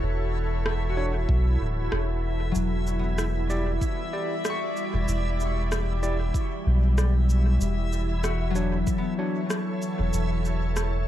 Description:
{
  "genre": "ambient dub",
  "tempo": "95 BPM",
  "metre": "4/4",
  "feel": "swing 54% on 16ths",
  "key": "unclear",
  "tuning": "A4 = 442 Hz",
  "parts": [
    { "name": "soft additive organ-like pad", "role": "sustained chords", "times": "0.0-11.1 s", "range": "E3 to D5", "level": "-32 LUFS", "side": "equal", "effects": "ensemble chorus, built-in reverb" },
    { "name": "concert harp", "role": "arpeggios", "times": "0.0-11.1 s", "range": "F#3 to C#6", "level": "-33 LUFS", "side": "left 3 dB", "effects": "dub echo" },
    { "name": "soft dub sub bass", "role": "bass", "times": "0.0-11.1 s", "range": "D1 to B1", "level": "-24 LUFS", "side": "equal", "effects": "tube saturation" },
    { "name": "backwards swelling texture", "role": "texture", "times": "0.0-11.1 s", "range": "E4 to E5", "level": "-35 LUFS", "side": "left 2 dB", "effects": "built-in reverb" },
    { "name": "electronic rim click and cabasa", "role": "drums", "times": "0.7-10.9 s", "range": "none", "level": "-33 LUFS", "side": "equal", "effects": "overdrive, dub echo" },
    { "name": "overdriven tine electric piano", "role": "stabs", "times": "1.0-9.4 s", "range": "D4 to D5", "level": "-36 LUFS", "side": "right 2 dB", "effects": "dub echo" },
    { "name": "electronic kick drum", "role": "drums", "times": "1.3-9.0 s", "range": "none", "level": "-28 LUFS", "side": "equal", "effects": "none" }
  ],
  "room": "little or no reverb",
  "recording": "echo-heavy mix",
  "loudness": "-23 LUFS",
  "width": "side -12 dB against mid",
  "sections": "0.0-11.1 A section",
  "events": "none",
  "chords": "0.0 Dmaj7/E; 2.6 Em7; 7.6 Dmaj7/E"
}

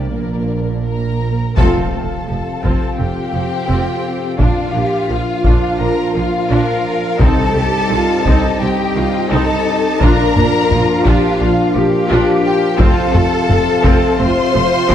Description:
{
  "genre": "cinematic, epic orchestral film score",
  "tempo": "86 BPM",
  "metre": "4/4",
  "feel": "straight",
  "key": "unclear",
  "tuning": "A4 = 441 Hz",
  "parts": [
    { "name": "rich symphonic violin section", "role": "melody", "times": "0.0-14.9 s", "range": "D5 to C6", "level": "-23 LUFS", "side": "left 3 dB", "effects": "none" },
    { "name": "rich symphonic violin section", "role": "second line", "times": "0.0-14.9 s", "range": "F4 to C5", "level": "-22 LUFS", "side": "left 3 dB", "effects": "none" },
    { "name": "rich symphonic viola section", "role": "accompaniment", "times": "0.0-14.9 s", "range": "Eb3 to F4", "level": "-22 LUFS", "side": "equal", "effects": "none" },
    { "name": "warm French horn section", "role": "sustained chords", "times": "0.0-14.9 s", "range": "F3 to F4", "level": "-22 LUFS", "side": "left 5 dB", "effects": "none" },
    { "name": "clear symphonic double bass section", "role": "bass", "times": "0.0-14.9 s", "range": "F1 to C2", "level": "-19 LUFS", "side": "right 2 dB", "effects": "none" },
    { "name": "rich symphonic cello section", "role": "bass", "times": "0.0-14.9 s", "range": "Bb2 to Bb4", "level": "-21 LUFS", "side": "right 1 dB", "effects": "none" },
    { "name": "bright trombone section", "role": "sustained chords", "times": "1.6-14.9 s", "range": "G2 to G3", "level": "-24 LUFS", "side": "right 3 dB", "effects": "none" },
    { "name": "mellow woodwind section", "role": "sustained chords", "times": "1.6-14.9 s", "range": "C4 to F5", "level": "-25 LUFS", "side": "equal", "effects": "none" },
    { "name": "taiko ensemble", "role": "drums", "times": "1.6-14.5 s", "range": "none", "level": "-16 LUFS", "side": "left 1 dB", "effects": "none" },
    { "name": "impact", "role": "sound effects", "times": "1.6-4.4 s", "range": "none", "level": "-25 LUFS", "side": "left 1 dB", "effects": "none" },
    { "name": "timpani", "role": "percussion", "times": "7.2-8.2 s", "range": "C3", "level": "-23 LUFS", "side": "left 2 dB", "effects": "none" }
  ],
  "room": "moderate concert hall reverb, RT60 2.1 s",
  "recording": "dark, warm production",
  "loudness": "-12 LUFS",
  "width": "side -10 dB against mid",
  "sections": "0.0-1.6 A section; 1.6-14.9 B section",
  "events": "build-up 0.0-1.6; band accent 1.6-2.3; impact 1.6-4.4",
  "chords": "0.1 Bb; 1.6 F; 4.4 Bb; 7.2 Cm; 10.0 Bb; 12.8 F"
}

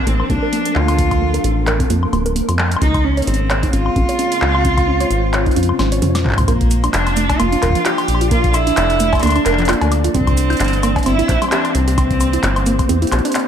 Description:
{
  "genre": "IDM",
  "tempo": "131 BPM",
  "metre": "4/4",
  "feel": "swing 56% on 16ths",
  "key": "Bb lydian",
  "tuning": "A4 = 440 Hz",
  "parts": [
    { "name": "warm cello", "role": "melody", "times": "0.0-13.1 s", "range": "Bb3 to G4", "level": "-20 LUFS", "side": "right 1 dB", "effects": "tape echo" },
    { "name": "warbly tape-like pad", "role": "sustained chords", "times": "0.0-13.5 s", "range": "Db3 to D5", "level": "-23 LUFS", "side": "left 1 dB", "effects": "chorus, built-in reverb" },
    { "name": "warbly dusty pluck", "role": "arpeggios", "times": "0.0-13.3 s", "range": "F3 to Db5", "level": "-22 LUFS", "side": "right 3 dB", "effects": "chorus, dub echo" },
    { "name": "flickering grainy texture", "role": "texture", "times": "0.0-6.5 s", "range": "Bb3", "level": "-30 LUFS", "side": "right 2 dB", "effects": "none" },
    { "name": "deep acid bass", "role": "bass", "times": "0.1-13.2 s", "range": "D1 to F2", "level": "-18 LUFS", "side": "equal", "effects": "none" },
    { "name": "electro analog drum machine", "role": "drums", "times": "0.1-13.5 s", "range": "cowbell, handclaps, hi-hat, shaker, snare drum, toms, woodblock", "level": "-21 LUFS", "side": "left 2 dB", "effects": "dub echo" },
    { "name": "electronic kick drum", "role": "drums", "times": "0.3-12.9 s", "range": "none", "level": "-20 LUFS", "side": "equal", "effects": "none" }
  ],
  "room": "moderate echo chamber reverb, RT60 1.7 s",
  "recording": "echo-heavy mix",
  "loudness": "-13 LUFS",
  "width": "side -8 dB against mid",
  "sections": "0.0-6.5 A section; 6.5-13.5 B section",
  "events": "filter sweep on synth arpeggio sound 0.0-6.5; drum fill 5.8-6.5",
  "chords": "0.0 Bbmaj7; 2.8 Dbmaj7; 6.5 Bbmaj7; 10.1 C7"
}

